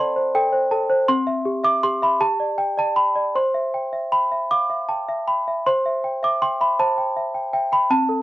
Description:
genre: classical, lullaby for celesta.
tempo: 53 BPM (dotted quarters).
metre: 6/8.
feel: rubato.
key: C major.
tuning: A4 = 444 Hz.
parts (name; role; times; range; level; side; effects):
small celesta; solo; 0.0-8.2 s; C4 to D6; -18 LUFS; equal; cassette tape.
room: moderate booth ambience, RT60 0.2 s.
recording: home recording on cassette.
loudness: -18 LUFS.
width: side -16 dB against mid.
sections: 0.0-5.7 A section; 5.7-8.2 B section.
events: none.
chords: 0.0 F69/C; 1.1 C; 2.2 G5; 3.3 C.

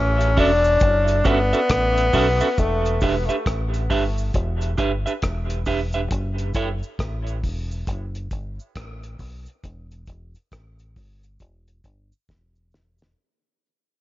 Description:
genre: dub reggae.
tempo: 68 BPM.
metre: 4/4.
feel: swing 63% on 16ths.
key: E dorian.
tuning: A4 = 444 Hz.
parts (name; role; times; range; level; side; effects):
clear tenor saxophone; melody; 0.0-3.0 s; A3 to D4; -21 LUFS; left 1 dB; dub echo.
deep dub fingered electric bass; bass; 0.0-13.1 s; E1 to B1; -24 LUFS; equal; none.
cloth-damped thuddy drum kit; drums; 0.2-13.2 s; hi-hat, kick drum, rim click, snare drum; -26 LUFS; equal; none.
cabasa; percussion; 0.2-13.1 s; none; -47 LUFS; right 4 dB; none.
clean electric guitar; accompaniment; 0.4-6.7 s; C#4 to E5; -26 LUFS; right 4 dB; dub echo.
room: studio ambience.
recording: echo-heavy mix, nothing above 7.5 kHz.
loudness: -19 LUFS.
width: side -16 dB against mid.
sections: 0.0-13.2 A section.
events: fade-out 0.0-13.2; break 2.6-13.2; drum fill 12.3-13.2.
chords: 0.0 F#m7; 2.6 Em7; 6.1 F#m7; 9.6 Em.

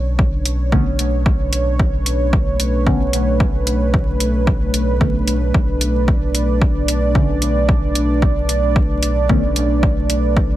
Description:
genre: dub techno.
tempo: 112 BPM.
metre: 4/4.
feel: straight.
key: B minor.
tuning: A4 = 440 Hz.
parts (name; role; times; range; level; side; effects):
dark analog pad; sustained chords; 0.0-10.6 s; A3 to D5; -21 LUFS; right 2 dB; chorus, sidechain pumping.
soft dub sub bass; bass; 0.0-10.6 s; B1; -19 LUFS; equal; sidechain pumping.
electronic kick drum; drums; 0.2-10.5 s; none; -17 LUFS; equal; overdrive.
electronic hi-hat; drums; 0.5-10.2 s; none; -22 LUFS; equal; overdrive.
deep mellow chord stab; stabs; 0.7-9.4 s; D3 to C#4; -24 LUFS; equal; chorus, phaser, cassette tape, sidechain pumping, dub echo.
room: little or no reverb.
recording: vinyl crackle.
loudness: -14 LUFS.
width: side -14 dB against mid.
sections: 0.0-10.6 A section.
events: none.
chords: 0.0 Bm9.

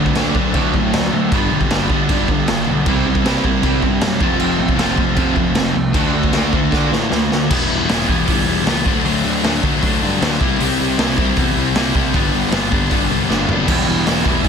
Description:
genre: punk rock.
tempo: 155 BPM.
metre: 4/4.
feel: straight.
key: G major.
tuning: A4 = 440 Hz.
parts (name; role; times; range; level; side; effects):
distorted electric guitar; riff; 0.0-7.5, 13.7-14.5 s; E2 to D4; -22 LUFS; right 14 dB; distortion.
distorted electric guitar; riff; 0.0-14.5 s; G2 to F#4; -20 LUFS; right 1 dB; distortion.
sludgy distorted guitar; riff; 0.0-14.5 s; G2 to E4; -21 LUFS; left 11 dB; overdrive.
fuzz picked electric bass; bass; 0.0-14.5 s; E1 to A2; -23 LUFS; right 1 dB; overdrive.
raw garage drum kit; drums; 0.1-14.5 s; crash cymbal, hi-hat, kick drum, snare drum, toms; -19 LUFS; equal; none.
room: little or no reverb.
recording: dense, heavily limited modern master.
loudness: -14 LUFS.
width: side -6 dB against mid.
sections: 0.0-7.5 A section; 7.5-14.5 B section.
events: drum fill 6.7-7.5, 13.3-13.7.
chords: 0.0 D; 1.3 G; 2.9 C; 4.2 F; 6.0 D; 7.5 Em; 8.9 D; 10.4 C; 12.1 G; 13.7 Em.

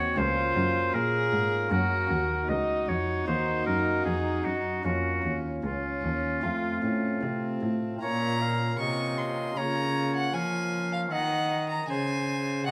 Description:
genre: classical, baroque-style sonata movement with continuo.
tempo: 77 BPM.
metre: 4/4.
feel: straight.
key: Bb minor.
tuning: A4 = 440 Hz.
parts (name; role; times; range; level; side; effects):
warm violin; melody; 0.0-12.7 s; C4 to Db6; -35 LUFS; equal; none.
clear oboe; second line; 0.0-12.7 s; F4 to F5; -32 LUFS; equal; none.
pipe organ, flutes; accompaniment; 0.0-12.7 s; Db2 to Gb4; -34 LUFS; equal; none.
warm cello; bass; 0.0-12.7 s; Db2 to F3; -34 LUFS; equal; none.
room: moderate recital hall reverb, RT60 1.6 s.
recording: none.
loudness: -28 LUFS.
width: mono.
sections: 0.0-8.0 A section; 8.0-12.7 A section.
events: none.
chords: 0.2 Bbm/Db; 1.7 Gb; 3.3 Ebm; 4.8 Bbm; 6.4 F; 8.0 Bbm; 9.6 Bbm/Db; 11.1 Cdim.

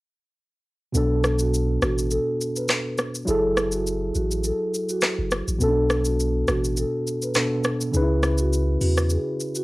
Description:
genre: afrobeats.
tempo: 103 BPM.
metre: 4/4.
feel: swing 55% on 16ths.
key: B dorian.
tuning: A4 = 440 Hz.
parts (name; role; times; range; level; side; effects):
tine electric piano; accompaniment; 0.9-9.6 s; B2 to B4; -25 LUFS; right 1 dB; medium stereo tremolo, cassette tape.
punchy sub bass; bass; 0.9-9.2 s; F#1 to E2; -24 LUFS; equal; none.
afro-pop drum kit; drums; 0.9-9.6 s; handclaps, hi-hat, rim click, shaker; -25 LUFS; equal; overdrive, cassette tape.
marimba with soft mallets; melody; 1.0-9.6 s; F#4 to B4; -27 LUFS; equal; cassette tape.
room: light reverb.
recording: home recording on cassette.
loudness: -21 LUFS.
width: side -21 dB against mid.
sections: 0.9-9.6 A section.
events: kick muted 0.9-9.6.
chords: 0.9 Bm7; 3.3 F#m9; 5.6 Bm7; 7.9 C#m7.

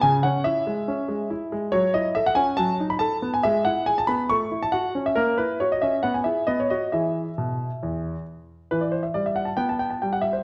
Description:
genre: classical-period piano sonatina.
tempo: 139 BPM.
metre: 4/4.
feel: straight.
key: E major.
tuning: A4 = 440 Hz.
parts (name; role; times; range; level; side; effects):
clear concert grand piano; solo; 0.0-10.4 s; E2 to C#6; -24 LUFS; equal; none.
room: wet recital hall reverb, RT60 1.3 s.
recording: worn, warbling old tape, cassette tape, warbly pitch drift.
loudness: -24 LUFS.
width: mono.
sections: 0.0-8.7 A section; 8.7-10.4 B section.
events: none.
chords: 0.0 C#m; 1.7 F#m7; 2.6 B7/F#; 3.4 E/G#; 4.3 F#m7/A; 5.2 F#7/A#; 6.0 E/B; 6.5 B; 6.9 E; 8.7 Em.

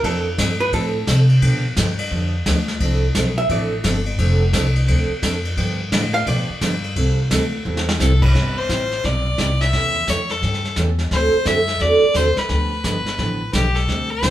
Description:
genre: country, western swing.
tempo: 173 BPM.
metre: 4/4.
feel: swing 64% on 8ths.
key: C major.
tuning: A4 = 440 Hz.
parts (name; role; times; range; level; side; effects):
archtop guitar, miked and amplified; second line; 0.0-1.3, 3.4-4.0, 6.1-6.8 s; A4 to F5; -22 LUFS; right 2 dB; none.
picked steel-string acoustic guitar; accompaniment; 0.0-14.3 s; C3 to A4; -24 LUFS; right 3 dB; none.
upright bass; bass; 0.0-14.3 s; F1 to C3; -20 LUFS; equal; none.
vintage brush drum kit; drums; 0.0-14.3 s; brushed snare drum, crash cymbal, hi-hat, kick drum, ride cymbal, snare drum; -24 LUFS; equal; none.
clear fiddle; melody; 8.0-14.3 s; G4 to E5; -21 LUFS; left 2 dB; none.
room: moderate large studio reverb, RT60 0.9 s.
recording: band playing live in one room.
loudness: -16 LUFS.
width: side -13 dB against mid.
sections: 0.0-8.3 A section; 8.3-14.3 B section.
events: hollow-body jazz guitar solo 0.0-8.3; drum fill 7.6-8.0.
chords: 0.0 Fmaj7; 1.4 G7; 2.8 F6; 4.2 Dm7/F; 5.6 G7; 7.0 C6; 8.3 Cmaj7; 9.7 A7; 11.1 D7; 12.5 G7.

